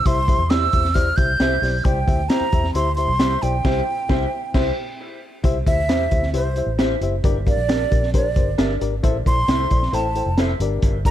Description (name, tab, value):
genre	uptempo 1960s-style soul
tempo	134 BPM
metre	4/4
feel	straight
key	unclear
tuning	A4 = 440 Hz
part	breathy hollow jazz flute	melody	0.0-11.1 s	C5 to G6	-23 LUFS	right 3 dB	none
part	reed electric piano	accompaniment	0.1-11.1 s	G2 to G5	-26 LUFS	left 5 dB	none
part	vintage muted fingered electric bass	bass	0.1-11.1 s	F1 to E2	-23 LUFS	equal	none
part	crunchy breakbeat drum kit	drums	0.1-11.1 s	crash cymbal, hi-hat, kick drum, snare drum	-21 LUFS	equal	none
part	electric guitar through a small old amp	stabs	0.5-10.5 s	D4 to E5	-30 LUFS	right 1 dB	wide subtle chorus, tape echo
room	light reverb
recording	dark, warm production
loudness	-17 LUFS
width	side -12 dB against mid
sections	0.0-5.4 A section; 5.4-11.1 B section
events	band accent 3.6-5.4; flute solo 5.4-11.1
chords	0.0 C; 7.2 Gm; 9.0 Am; 10.6 Gm